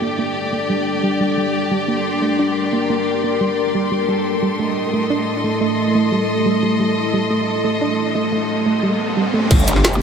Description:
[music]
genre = dark technical drum and bass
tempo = 177 BPM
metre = 4/4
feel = straight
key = unclear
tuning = A4 = 440 Hz
[part]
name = deep dark ambient pad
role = sustained chords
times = 0.0-9.5 s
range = G3 to Bb4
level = -21 LUFS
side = left 1 dB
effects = chorus, built-in reverb, sidechain pumping
[part]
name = soft round pluck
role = arpeggios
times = 0.0-9.4 s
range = G3 to D4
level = -21 LUFS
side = right 3 dB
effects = chorus, sidechain pumping, tape echo
[part]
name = rich studio string section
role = texture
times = 0.0-10.0 s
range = G4 to C6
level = -23 LUFS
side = left 2 dB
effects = sidechain pumping
[part]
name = riser and impact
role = sound effects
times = 8.0-10.0 s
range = none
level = -24 LUFS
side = right 1 dB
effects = none
[part]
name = growl bass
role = bass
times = 9.5-10.0 s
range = G1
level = -17 LUFS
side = equal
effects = chorus, tube saturation, sidechain pumping
[part]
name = crunchy breakbeat drum kit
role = drums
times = 9.5-9.9 s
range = ride cymbal, snare drum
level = -30 LUFS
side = equal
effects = none
[part]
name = drum and bass drum kit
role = drums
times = 9.5-10.0 s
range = crash cymbal, hi-hat, shaker, snare drum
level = -19 LUFS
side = equal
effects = low-pass filter on hats, low-pass filter on perc, low-pass filter on snare, low-pass filter on cymbals, low-pass filter on room
[part]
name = electronic kick drum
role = drums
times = 9.5-9.6 s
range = none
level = -13 LUFS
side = equal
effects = none
[sound]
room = wet huge ambient reverb, RT60 8.0 s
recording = dreamy mix soaked in reverb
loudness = -16 LUFS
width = side -6 dB against mid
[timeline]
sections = 0.0-9.5 A section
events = filter sweep on synth pluck 0.0-9.5; riser 8.0-9.5; impact 9.5-10.0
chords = 0.0 Gm; 4.1 Adim; 9.5 G5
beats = | 0.02 0.35 0.69 1.03 | 1.37 1.71 2.05 2.39 | 2.73 3.07 3.41 3.75 | 4.08 4.42 4.76 5.10 | 5.44 5.78 6.12 6.46 | 6.80 7.13 7.47 7.81 | 8.15 8.49 8.83 9.17 | 9.51 9.85

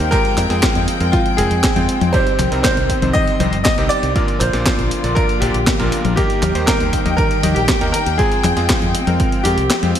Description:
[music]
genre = italo disco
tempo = 119 BPM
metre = 4/4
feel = straight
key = unclear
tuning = A4 = 438 Hz
[part]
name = bright grand piano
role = melody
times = 0.0-10.0 s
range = F4 to Eb5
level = -21 LUFS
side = equal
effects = ping-pong delay
[part]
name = dark studio string section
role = sustained chords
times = 0.0-10.0 s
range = D3 to G5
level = -22 LUFS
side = left 2 dB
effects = none
[part]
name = bright electric grand piano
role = stabs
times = 0.0-10.0 s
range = Bb2 to G5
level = -24 LUFS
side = right 1 dB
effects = vintage 12-bit sampler grit, ping-pong delay
[part]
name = fingered electric bass with an envelope filter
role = bass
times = 0.0-9.9 s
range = F1 to F2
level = -20 LUFS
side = equal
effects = none
[part]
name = clean 12-bit digital drum machine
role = drums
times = 0.0-10.0 s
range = handclaps, hi-hat, snare drum, toms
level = -21 LUFS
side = left 2 dB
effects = none
[part]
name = electronic kick drum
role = drums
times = 0.1-9.3 s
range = none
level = -20 LUFS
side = equal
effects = none
[sound]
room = moderate lush hall reverb, RT60 1.9 s, digital ambience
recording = bright 1980s-style digital production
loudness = -14 LUFS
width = side -9 dB against mid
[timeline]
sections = 0.0-10.0 A section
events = kick drops out 9.7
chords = 0.1 Fmadd9; 2.1 Cm; 4.2 Bb; 6.2 Eb; 8.2 Fmadd9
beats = | 0.12 0.63 1.13 1.64 | 2.14 2.64 3.15 3.65 | 4.16 4.66 5.17 5.67 | 6.17 6.68 7.18 7.69 | 8.19 8.69 9.20 9.70

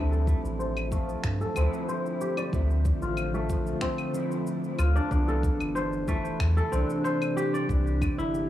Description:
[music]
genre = organic downtempo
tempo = 93 BPM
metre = 4/4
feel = straight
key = D minor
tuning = A4 = 440 Hz
[part]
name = mellow electric guitar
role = accompaniment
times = 0.0-8.5 s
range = E3 to E5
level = -33 LUFS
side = left 1 dB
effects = ensemble chorus, sidechain pumping, tape echo
[part]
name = bowed-like drone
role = sustained chords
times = 1.7-8.5 s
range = C3 to E5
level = -37 LUFS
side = equal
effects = built-in reverb, sidechain pumping
[part]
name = kora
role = arpeggios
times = 0.0-8.5 s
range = A3 to D5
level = -30 LUFS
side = equal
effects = low-pass filter, tape echo
[part]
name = round analog bass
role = bass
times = 0.0-8.5 s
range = G1 to G2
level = -27 LUFS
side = equal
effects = tube saturation, sidechain pumping
[part]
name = electronic shaker, claves and finger snaps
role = drums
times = 0.1-8.5 s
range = none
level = -38 LUFS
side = left 3 dB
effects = none
[part]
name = electronic kick drum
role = drums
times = 0.3-8.2 s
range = none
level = -30 LUFS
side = equal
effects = none
[sound]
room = digital ambience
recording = dry, gritty hardware recording, transformer saturation, cassette tape, small room ambience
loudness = -25 LUFS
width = side -13 dB against mid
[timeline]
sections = 0.0-8.5 A section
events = filter sweep on kora 0.0-8.5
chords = 0.0 Dm7; 5.1 Cmaj7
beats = 0.60 1.24 1.89 | 2.53 3.18 3.82 4.47 | 5.11 5.76 6.40 7.05 | 7.69 8.34

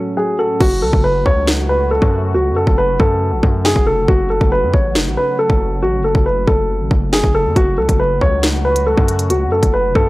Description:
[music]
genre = hip hop, drill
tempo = 138 BPM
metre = 4/4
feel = half-time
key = F# minor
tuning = A4 = 442 Hz
[part]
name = dark baby grand piano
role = melody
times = 0.0-10.1 s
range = F#4 to C#5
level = -16 LUFS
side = equal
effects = low-pass filter
[part]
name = soft electric-piano-like synth keys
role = accompaniment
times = 0.0-0.6 s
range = F#3 to F#4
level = -23 LUFS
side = right 2 dB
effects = chorus, low-pass filter
[part]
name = sweeping resonant pad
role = sustained chords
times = 0.0-10.1 s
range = A2 to F#4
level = -24 LUFS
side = equal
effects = chorus
[part]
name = distorted 808-style bass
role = bass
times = 0.6-10.1 s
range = E#1 to F#2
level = -19 LUFS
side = equal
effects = distortion
[part]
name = drill drum kit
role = drums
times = 0.6-10.1 s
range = crash cymbal, hi-hat, kick drum, snare drum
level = -16 LUFS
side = equal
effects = none
[sound]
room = digital ambience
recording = dry, gritty hardware recording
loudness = -13 LUFS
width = side -19 dB against mid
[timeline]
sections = 0.6-10.1 A section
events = hi-hats muted 0.6-7.6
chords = 0.0 F#madd9; 0.6 F#m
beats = 0.17 | 0.60 1.04 1.48 1.91 | 2.34 2.78 3.21 3.65 | 4.08 4.52 4.95 5.39 | 5.82 6.26 6.69 7.13 | 7.56 8.00 8.43 8.87 | 9.30 9.74

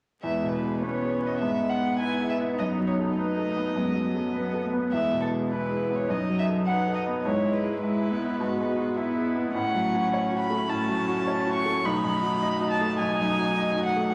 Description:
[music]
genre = quick classical-period movement for piano quartet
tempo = 104 BPM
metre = 4/4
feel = straight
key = E major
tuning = A4 = 439 Hz
[part]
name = warm violin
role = melody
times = 0.2-14.1 s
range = A4 to C#6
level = -32 LUFS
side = equal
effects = none
[part]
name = warm cello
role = second line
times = 0.2-14.1 s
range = F#3 to B3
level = -34 LUFS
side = equal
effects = none
[part]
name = bright grand piano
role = accompaniment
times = 0.2-14.1 s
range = B1 to E5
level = -30 LUFS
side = equal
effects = none
[part]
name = warm viola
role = accompaniment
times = 0.2-14.1 s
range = B3 to F#4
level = -34 LUFS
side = equal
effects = none
[sound]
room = wet recital hall reverb, RT60 1.7 s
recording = vinyl crackle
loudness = -26 LUFS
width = mono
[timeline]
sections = 0.2-14.1 A section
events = none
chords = 0.2 E; 1.4 E/G#; 2.6 B7/F#; 4.9 E; 6.1 B7/F#; 7.3 E/G#; 9.5 F#m/A; 11.8 B7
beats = | 0.24 0.83 1.42 2.00 | 2.59 3.17 3.76 4.35 | 4.93 5.51 6.10 6.68 | 7.25 7.83 8.40 8.97 | 9.55 10.12 10.70 11.27 | 11.85 12.43 13.00 13.58

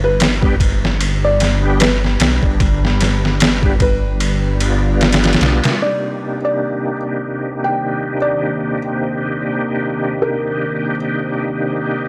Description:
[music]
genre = trip hop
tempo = 75 BPM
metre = 4/4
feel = swing 56% on 16ths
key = C minor from 5.8 s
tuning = A4 = 439 Hz
[part]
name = felt-muted upright piano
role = melody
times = 0.0-10.9 s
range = Bb4 to G5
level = -24 LUFS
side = equal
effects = vintage 12-bit sampler grit, tape echo
[part]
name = deep dark ambient pad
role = sustained chords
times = 0.0-12.1 s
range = Eb3 to Eb6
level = -30 LUFS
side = equal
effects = chorus, built-in reverb
[part]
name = dark detuned saw bass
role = bass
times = 0.0-5.6 s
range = G1 to B1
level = -20 LUFS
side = equal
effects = none
[part]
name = trip hop sampler-style drum kit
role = drums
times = 0.2-5.8 s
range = kick drum, ride cymbal, snare drum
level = -18 LUFS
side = equal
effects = overdrive
[part]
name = bright tonewheel organ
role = accompaniment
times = 0.4-12.1 s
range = C3 to G4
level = -22 LUFS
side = equal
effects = overdrive, chorus vibrato, slow rotary speaker, tremolo, low-pass filter, tape echo
[sound]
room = little or no reverb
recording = dry, gritty hardware recording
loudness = -17 LUFS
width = mono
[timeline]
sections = 0.0-5.8 A section; 5.8-12.1 B section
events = filter sweep on tonewheel organ 5.8-12.1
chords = 0.0 G; 5.8 Cm9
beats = 0.20 1.00 1.80 | 2.60 3.40 4.20 5.00 | 5.80 6.60 7.40 8.20 | 9.00 9.80 10.60 11.40

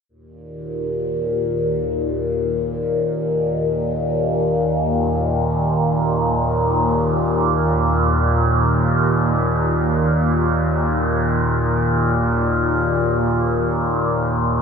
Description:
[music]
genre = ambient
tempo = free time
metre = none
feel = none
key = unclear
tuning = A4 = 440 Hz
[part]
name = overtone-sweeping drone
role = solo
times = 0.5-14.6 s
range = Eb2 to Bb2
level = -17 LUFS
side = equal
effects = chorus, built-in reverb, phaser, ping-pong delay
[sound]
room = wet huge ambient reverb, RT60 7.9 s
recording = dreamy mix soaked in reverb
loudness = -17 LUFS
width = side -6 dB against mid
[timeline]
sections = 0.1-14.6 A section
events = none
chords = 0.1 Eb5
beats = free time

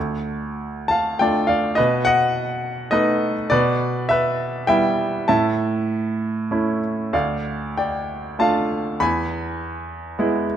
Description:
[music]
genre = classical, lyrical solo piano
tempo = 93-106 BPM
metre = 3/4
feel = rubato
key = unclear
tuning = A4 = 440 Hz
[part]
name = bright baby grand piano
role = solo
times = 0.0-10.6 s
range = D2 to B5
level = -19 LUFS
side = equal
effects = none
[sound]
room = moderate recital hall reverb, RT60 1.7 s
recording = none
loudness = -19 LUFS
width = side -10 dB against mid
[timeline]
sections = 0.0-10.6 A section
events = none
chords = 0.0 Dm; 1.8 B7; 3.5 Em/B; 5.3 A; 7.1 Dm; 9.0 E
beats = 0.59 1.20 | 1.78 2.35 2.92 | 3.51 4.09 4.68 | 5.28 5.90 6.52 | 7.13 7.77 8.40 | 9.01 9.61 10.20

